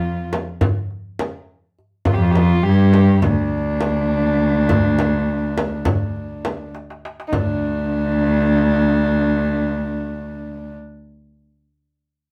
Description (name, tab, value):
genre	Turkish makam ensemble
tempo	206 BPM (eighths)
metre	9/8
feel	straight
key	D minor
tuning	A4 = 440 Hz
part	dark cello	melody	0.0-10.7 s	D2 to G2	-20 LUFS	equal	none
part	warm kamancheh	second line	0.0-10.8 s	D4 to G4	-25 LUFS	equal	none
part	darbuka	percussion	0.3-7.6 s	none	-26 LUFS	equal	none
part	frame drum	percussion	0.3-7.6 s	none	-26 LUFS	equal	none
room	moderate studio reverb, RT60 0.6 s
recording	band playing live in one room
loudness	-19 LUFS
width	mono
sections	0.0-7.3 A section; 7.3-10.0 B section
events	drum fill 6.7-7.3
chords	none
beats	0.04 0.33 0.62 0.91 1.20 1.49 1.78 | 2.08 2.37 2.66 2.95 3.24 3.53 3.82 4.12 4.41 | 4.70 4.99 5.28 5.58 5.87 6.16 6.45 6.74 7.03 | 7.33 7.62 7.91 8.20 8.49 8.79 9.08 9.37 9.66